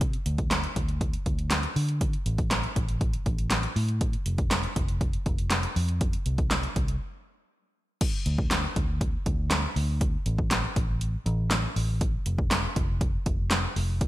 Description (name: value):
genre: dance-pop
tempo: 120 BPM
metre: 4/4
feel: straight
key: unclear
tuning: A4 = 441 Hz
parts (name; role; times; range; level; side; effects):
- vintage muted fingered electric bass; bass; 0.0-14.1 s; F1 to D3; -28 LUFS; equal; sidechain pumping
- punchy analog drum machine; drums; 0.0-14.1 s; crash cymbal, handclaps, hi-hat, kick drum, snare drum; -27 LUFS; equal; gated reverb
room: little or no reverb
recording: bright 1980s-style digital production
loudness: -25 LUFS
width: side -16 dB against mid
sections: 0.0-8.0 A section; 8.0-14.1 B section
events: break 7.0-8.0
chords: none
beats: | 0.01 0.51 1.01 1.51 | 2.01 2.51 3.01 3.51 | 4.01 4.51 5.01 5.51 | 6.01 6.51 7.01 7.51 | 8.01 8.51 9.01 9.51 | 10.01 10.51 11.01 11.51 | 12.01 12.51 13.01 13.51 | 14.01